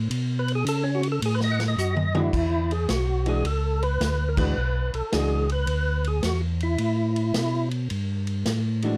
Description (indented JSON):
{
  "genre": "soul jazz organ trio",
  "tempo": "108 BPM",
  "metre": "4/4",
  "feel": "swing 67% on 8ths",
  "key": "E mixolydian",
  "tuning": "A4 = 445 Hz",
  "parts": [
    { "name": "mellow tonewheel organ", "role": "bass", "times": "0.0-9.0 s", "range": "B1 to C#3", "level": "-27 LUFS", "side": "equal", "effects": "overdrive, chorus vibrato, slow rotary speaker" },
    { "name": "vintage drum kit", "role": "drums", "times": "0.1-8.9 s", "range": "crash cymbal, hi-hat, kick drum, ride cymbal, snare drum, toms", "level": "-34 LUFS", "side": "equal", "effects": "none" },
    { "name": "percussive tonewheel organ", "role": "melody", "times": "0.4-7.7 s", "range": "C#4 to F#5", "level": "-30 LUFS", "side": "equal", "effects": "overdrive, chorus vibrato, slow rotary speaker" },
    { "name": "vintage hollow-body jazz guitar", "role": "accompaniment", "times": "2.1-5.5, 8.8-9.0 s", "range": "E3 to F#4", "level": "-30 LUFS", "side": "equal", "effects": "none" }
  ],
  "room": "little or no reverb",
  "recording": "none",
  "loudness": "-25 LUFS",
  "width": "mono",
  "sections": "0.0-2.3 A section; 2.3-9.0 B section",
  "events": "tonewheel organ solo 0.0-2.3; drum fill 1.8-2.3; band accent 4.3",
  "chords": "0.1 B9; 2.3 E9; 6.8 Asus2",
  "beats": "| 0.10 0.66 1.22 1.77 | 2.33 2.89 3.44 4.00 | 4.56 5.12 5.67 6.23 | 6.79 7.34 7.90 8.46"
}